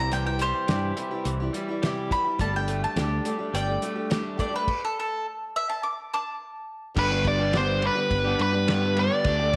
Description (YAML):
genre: folk rock and heartland rock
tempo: 105 BPM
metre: 4/4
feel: straight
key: G major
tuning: A4 = 439 Hz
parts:
  - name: bowl-back mandolin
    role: second line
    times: 0.0-7.0 s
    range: G4 to D6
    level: -31 LUFS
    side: equal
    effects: none
  - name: picked old ladder-braced acoustic guitar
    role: accompaniment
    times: 0.0-9.5 s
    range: G2 to G4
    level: -34 LUFS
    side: equal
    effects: none
  - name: electric guitar through a small old amp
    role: riff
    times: 0.0-9.6 s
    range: G2 to G4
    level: -35 LUFS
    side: equal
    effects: spring reverb
  - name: fingered electric bass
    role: bass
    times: 0.0-9.6 s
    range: G1 to G2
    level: -30 LUFS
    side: equal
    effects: none
  - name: cloth-damped thuddy drum kit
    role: drums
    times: 0.1-9.6 s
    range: crash cymbal, hi-hat, kick drum, ride cymbal, snare drum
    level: -32 LUFS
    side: equal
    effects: none
  - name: nasal lead guitar with a parked wah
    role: melody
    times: 7.0-9.6 s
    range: B4 to D5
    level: -27 LUFS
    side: equal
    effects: overdrive
room: moderate plate reverb, RT60 1.6 s, small room ambience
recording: none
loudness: -26 LUFS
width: mono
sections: 0.0-7.0 A section; 7.0-9.6 B section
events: mandolin solo 0.0-7.0; stop 4.7-7.0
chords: 0.0 C; 2.4 Gsus2; 4.7 N.C.; 7.0 G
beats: | 0.12 0.68 1.25 1.82 | 2.39 2.96 3.54 4.11 | 4.68 5.25 5.82 6.39 | 6.96 7.54 8.11 8.68 | 9.25